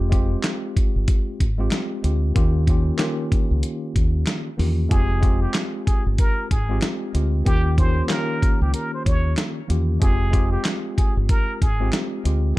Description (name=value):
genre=hip hop, boom-bap hip-hop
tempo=94 BPM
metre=4/4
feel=swing 61% on 16ths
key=F minor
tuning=A4 = 440 Hz
part: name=tine electric piano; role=accompaniment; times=0.0-12.6 s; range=Eb3 to G4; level=-27 LUFS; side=left 1 dB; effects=overdrive, medium stereo tremolo, cassette tape, high-pass filter, low-pass filter
part: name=deep dub fingered electric bass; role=bass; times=0.0-12.5 s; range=F1 to E2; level=-21 LUFS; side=equal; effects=none
part: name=dusty soul sampler-style drum kit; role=drums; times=0.1-12.4 s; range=handclaps, hi-hat, kick drum, snare drum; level=-21 LUFS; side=equal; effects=none
part: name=trumpet with plunger mute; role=melody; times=4.9-12.6 s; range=G4 to Db5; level=-29 LUFS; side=right 1 dB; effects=high-pass filter, low-pass filter, plate reverb, ping-pong delay
room=little or no reverb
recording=dark, warm production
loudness=-19 LUFS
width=side -18 dB against mid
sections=0.0-12.6 A section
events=break 0.0-4.9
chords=0.0 Fmadd9; 2.4 Eb7; 4.9 Fmadd9; 7.5 Eb7; 10.0 Fmadd9